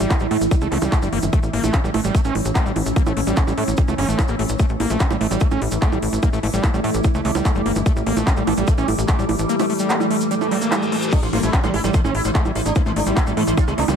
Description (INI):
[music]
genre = psychedelic trance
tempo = 147 BPM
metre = 4/4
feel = straight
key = unclear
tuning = A4 = 437 Hz
[part]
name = evolving wavetable pad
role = sustained chords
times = 0.0-14.0 s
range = E3 to E4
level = -25 LUFS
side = right 1 dB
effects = chorus, built-in reverb, sidechain pumping
[part]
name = screaming distorted acid line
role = riff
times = 0.0-14.0 s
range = G3 to C#4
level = -25 LUFS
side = moving between left 7 dB and right 7 dB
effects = distortion, chorus, auto-pan, sidechain pumping, dub echo
[part]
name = tight sequencer bass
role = bass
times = 0.0-13.9 s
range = G1 to A2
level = -23 LUFS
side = left 1 dB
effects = none
[part]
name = big-room dance drum kit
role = drums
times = 0.0-14.0 s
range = bongos, crash cymbal, handclaps, hi-hat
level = -26 LUFS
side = right 3 dB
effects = overdrive
[part]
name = cabasa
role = percussion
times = 0.0-14.0 s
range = none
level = -35 LUFS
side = right 3 dB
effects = none
[part]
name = deep dark ambient pad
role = texture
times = 1.3-14.0 s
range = A3 to E6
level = -28 LUFS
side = right 1 dB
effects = chorus, built-in reverb, sidechain pumping
[part]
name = electronic kick drum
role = drums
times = 0.1-13.7 s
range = none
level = -18 LUFS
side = equal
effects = none
[part]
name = reverse cymbal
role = sound effects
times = 10.4-11.1 s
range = none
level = -31 LUFS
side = left 3 dB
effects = none
[part]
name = sitar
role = melody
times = 11.1-13.9 s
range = E3 to F4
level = -26 LUFS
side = equal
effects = phaser, sidechain pumping, dub echo
[sound]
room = light reverb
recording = none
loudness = -17 LUFS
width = side -7 dB against mid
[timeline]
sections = 0.0-14.0 A section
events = reverse cymbal 10.4-11.1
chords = 0.0 A5